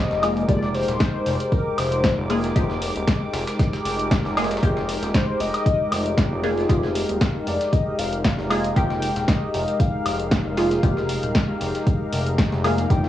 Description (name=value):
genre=deep house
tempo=116 BPM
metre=4/4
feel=swing 54% on 16ths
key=F dorian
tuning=A4 = 439 Hz
part: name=warm velvety synth lead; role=melody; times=0.0-13.1 s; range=Bb4 to G5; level=-28 LUFS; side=left 3 dB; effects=chorus, cassette tape, tape echo
part: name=warm analog pad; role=sustained chords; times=0.0-13.1 s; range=Ab3 to D6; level=-27 LUFS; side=left 1 dB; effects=chorus, sidechain pumping, cassette tape
part: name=filtered dub chord stab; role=stabs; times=0.0-13.1 s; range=Ab3 to Ab4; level=-25 LUFS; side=equal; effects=phaser, wide subtle chorus, sidechain pumping, cassette tape, analog delay
part: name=smooth synth bass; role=bass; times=0.0-13.1 s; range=Eb1 to F1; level=-27 LUFS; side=equal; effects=none
part: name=breakbeat sampler-style drum kit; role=drums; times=0.1-13.1 s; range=hi-hat, snare drum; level=-39 LUFS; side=equal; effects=none
part: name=punchy analog drum machine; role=drums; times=0.2-13.0 s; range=hi-hat, snare drum, woodblock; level=-26 LUFS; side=left 1 dB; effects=cassette tape
part: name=electronic kick drum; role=drums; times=0.5-13.0 s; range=none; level=-21 LUFS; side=equal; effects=overdrive, cassette tape
room=light reverb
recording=home recording on cassette, small room ambience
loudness=-19 LUFS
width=side -12 dB against mid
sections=0.0-13.1 A section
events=none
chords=0.0 Fm11